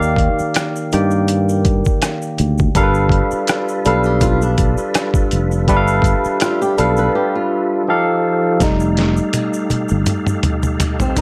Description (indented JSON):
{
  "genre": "R&B, neo-soul",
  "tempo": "82 BPM",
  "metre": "4/4",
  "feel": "swing 54% on 16ths",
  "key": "unclear",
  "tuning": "A4 = 438 Hz",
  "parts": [
    { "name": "barky tine electric piano", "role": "accompaniment", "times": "0.0-11.2 s", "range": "Eb3 to G5", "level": "-20 LUFS", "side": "equal", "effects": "subtle chorus" },
    { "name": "fingered electric bass", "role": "bass", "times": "0.0-10.0 s", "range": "F1 to G2", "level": "-19 LUFS", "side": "equal", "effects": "none" },
    { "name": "maracas and finger snaps", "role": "percussion", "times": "0.0-11.2 s", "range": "none", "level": "-34 LUFS", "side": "equal", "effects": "none" },
    { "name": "boom bap sampler-style drum kit", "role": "drums", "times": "0.2-11.2 s", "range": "hi-hat, kick drum, rim click, snare drum, toms", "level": "-20 LUFS", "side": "equal", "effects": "none" },
    { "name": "tonewheel organ", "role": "sustained chords", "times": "2.8-11.2 s", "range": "F3 to F5", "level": "-30 LUFS", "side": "equal", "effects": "fast rotary speaker, chorus vibrato" },
    { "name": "flamenco guitar", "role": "second line", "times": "3.9-11.2 s", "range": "C4 to B4", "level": "-24 LUFS", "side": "equal", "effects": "none" }
  ],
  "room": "light reverb",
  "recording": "dark, warm production",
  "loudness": "-16 LUFS",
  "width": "mono",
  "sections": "0.0-8.6 A section; 8.6-11.2 B section",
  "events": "silent gap 7.1-8.6; drum fill 8.6-11.2; tine electric piano solo 8.6-11.2",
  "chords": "0.0 Ebmaj9; 2.8 G9; 7.9 F9"
}